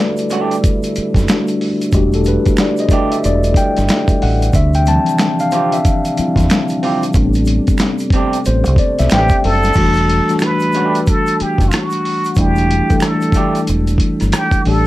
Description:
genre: R&B, neo-soul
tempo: 92 BPM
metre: 4/4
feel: swing 62% on 16ths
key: E minor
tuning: A4 = 440 Hz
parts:
  - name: electric guitar through a small old amp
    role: second line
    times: 0.0-13.6 s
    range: A3 to G4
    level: -20 LUFS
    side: right 4 dB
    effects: none
  - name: mellow tine electric piano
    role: accompaniment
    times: 0.0-14.9 s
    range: E3 to A5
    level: -17 LUFS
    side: left 2 dB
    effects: medium stereo tremolo
  - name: percussive tonewheel organ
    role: sustained chords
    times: 0.0-9.7 s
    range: C3 to E4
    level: -23 LUFS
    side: right 2 dB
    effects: overdrive, chorus vibrato, slow rotary speaker
  - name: dusty soul sampler-style drum kit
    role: drums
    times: 0.2-14.8 s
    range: crash cymbal, hi-hat, kick drum, rim click, snare drum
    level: -16 LUFS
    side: equal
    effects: overdrive
  - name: tube shaker and finger snaps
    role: percussion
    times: 0.2-14.6 s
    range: none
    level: -32 LUFS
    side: right 5 dB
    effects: none
  - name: deep dub fingered electric bass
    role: bass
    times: 1.0-14.9 s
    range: E1 to E2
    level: -15 LUFS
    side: equal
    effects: none
  - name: trumpet with plunger mute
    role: melody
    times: 9.1-14.9 s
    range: F4 to B4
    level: -18 LUFS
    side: equal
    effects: none
room: light reverb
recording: dark, warm production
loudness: -12 LUFS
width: side -16 dB against mid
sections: 0.0-9.8 A section; 9.8-14.9 B section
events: tine electric piano solo 0.0-9.8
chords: 0.0 Em11; 4.5 Dm11; 7.1 Am11; 9.8 Em11

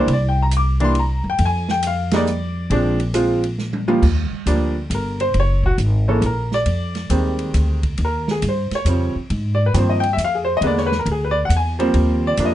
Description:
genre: jazz piano trio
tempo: 136 BPM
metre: 3/4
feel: swing 66% on 8ths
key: Eb major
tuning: A4 = 440 Hz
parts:
  - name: clear baby grand piano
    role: melody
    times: 0.0-12.5 s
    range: Eb2 to D6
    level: -20 LUFS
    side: equal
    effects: none
  - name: upright bass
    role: bass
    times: 0.0-12.5 s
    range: Gb1 to Ab2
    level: -19 LUFS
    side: equal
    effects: none
  - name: open jazz drum kit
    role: drums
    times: 0.1-12.5 s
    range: crash cymbal, hi-hat, kick drum, ride cymbal, snare drum, toms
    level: -28 LUFS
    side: right 2 dB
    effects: none
room: light reverb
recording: dark, warm production, nothing above 10.4 kHz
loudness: -17 LUFS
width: side -13 dB against mid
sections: 0.0-4.0 A section; 4.0-12.5 B section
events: band accent 2.0; drum fill 3.6-4.0; grand piano solo 4.0-12.5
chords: 0.1 C7(no3); 1.4 Fm; 2.7 Bb7; 4.0 Ebmaj7; 5.3 Gbadd9; 6.7 Fm9; 8.0 Eb13; 9.3 Ab6; 10.6 E7#11; 11.9 Ebmaj7

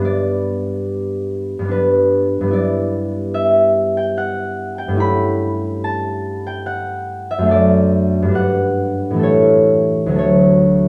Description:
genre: classical, solo harp piece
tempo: 72 BPM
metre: 3/4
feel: rubato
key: unclear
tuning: A4 = 440 Hz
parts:
  - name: concert harp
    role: solo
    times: 0.0-10.9 s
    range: D2 to B5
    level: -17 LUFS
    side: equal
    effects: none
room: light reverb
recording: none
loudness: -17 LUFS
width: mono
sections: 0.0-10.9 A section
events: none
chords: 0.0 G; 2.5 Em7/G; 5.0 A7/G; 7.5 D/F#; 8.3 Gmaj7; 9.2 A; 10.2 D

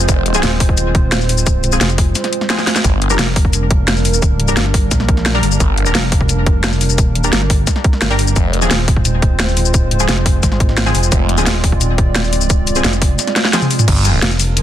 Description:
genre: dark technical drum and bass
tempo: 174 BPM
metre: 4/4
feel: straight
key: unclear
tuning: A4 = 439 Hz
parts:
  - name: dark analog pad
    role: sustained chords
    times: 0.0-14.6 s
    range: G3 to D5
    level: -22 LUFS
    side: right 2 dB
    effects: chorus, sidechain pumping
  - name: pulsing pluck wobble bass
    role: bass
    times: 0.0-14.6 s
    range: Eb1 to Bb1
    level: -16 LUFS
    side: equal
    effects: chorus
  - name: drum and bass drum kit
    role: drums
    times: 0.0-14.6 s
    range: crash cymbal, hi-hat, shaker, snare drum, toms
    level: -17 LUFS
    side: left 1 dB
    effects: overdrive
  - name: phased detuned saw bass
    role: bass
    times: 0.1-0.4, 2.8-3.2, 5.6-5.9, 8.4-8.7, 11.1-11.5, 13.9-14.2 s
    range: F1 to G1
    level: -15 LUFS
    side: equal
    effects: phaser, overdrive
  - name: electronic kick drum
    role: drums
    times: 0.1-13.9 s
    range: none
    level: -14 LUFS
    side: equal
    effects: overdrive
  - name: orchestra-hit-like synth stab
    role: stabs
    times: 0.3-13.6 s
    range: F3 to Bb4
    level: -22 LUFS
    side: left 2 dB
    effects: built-in reverb, ping-pong delay
room: digital ambience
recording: dense, heavily limited modern master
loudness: -12 LUFS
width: side -11 dB against mid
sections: 0.0-13.9 A section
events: drop 0.0-13.9; drum fill 2.6, 13.4-13.9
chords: 0.0 Fm; 2.8 Gm; 8.4 Fm; 13.9 Gm

